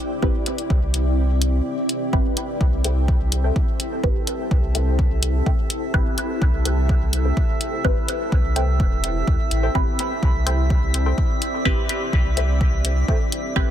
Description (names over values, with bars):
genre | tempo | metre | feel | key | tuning
dub techno | 126 BPM | 4/4 | straight | A minor | A4 = 440 Hz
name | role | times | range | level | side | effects
granular cloud pad | sustained chords | 0.0-13.7 s | C4 to D5 | -28 LUFS | left 1 dB | built-in reverb, sidechain pumping
filtered dub chord stab | stabs | 0.2-13.7 s | C4 to B4 | -28 LUFS | right 1 dB | phaser, sidechain pumping, dub echo
pure sine sub bass | bass | 0.2-13.7 s | E1 to D2 | -21 LUFS | equal | sidechain pumping
electronic kick drum | drums | 0.2-13.7 s | none | -21 LUFS | equal | none
electronic hi-hat | drums | 0.5-13.4 s | none | -25 LUFS | left 2 dB | none
drifting glass-harmonics texture | texture | 3.2-13.7 s | E5 | -32 LUFS | right 5 dB | chorus, built-in reverb, sidechain pumping
filtered dub chord stab | riff | 2.8-13.1 s | A4 to G5 | -32 LUFS | left 2 dB | phaser, lush chorus, sidechain pumping, dub echo
room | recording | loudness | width
little or no reverb | dense, heavily limited modern master | -18 LUFS | side -10 dB against mid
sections
0.0-13.7 A section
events
kick drops out 1.2-2.1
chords
0.0 Am7